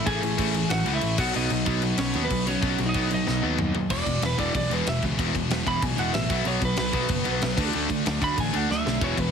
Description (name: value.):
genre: punk rock.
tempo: 188 BPM.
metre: 4/4.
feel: straight.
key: unclear.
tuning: A4 = 442 Hz.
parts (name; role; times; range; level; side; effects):
lightly driven lead guitar; melody; 0.0-9.3 s; B3 to B5; -29 LUFS; right 3 dB; none.
distorted electric guitar; riff; 0.0-9.3 s; E2 to D4; -30 LUFS; left 11 dB; overdrive.
distorted electric guitar; riff; 0.0-9.3 s; E2 to D4; -32 LUFS; left 2 dB; overdrive.
overdriven semi-hollow guitar; riff; 0.0-9.3 s; E2 to D4; -30 LUFS; right 12 dB; none.
picked electric bass; bass; 0.1-9.3 s; E1 to D#2; -30 LUFS; equal; none.
big rock drum kit; drums; 0.1-9.3 s; crash cymbal, kick drum, snare drum, toms; -29 LUFS; left 2 dB; none.
room: light reverb.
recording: heavily compressed radio sound, multiband compression.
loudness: -22 LUFS.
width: side -7 dB against mid.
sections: 0.0-3.9 A section; 3.9-9.3 B section.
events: half time 0.0-3.9; drum fill 3.3-3.9, 8.7-9.0; lead electric guitar solo 3.9-9.3.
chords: 0.0 A5; 1.2 B; 3.9 E5; 6.3 B5; 7.6 D5.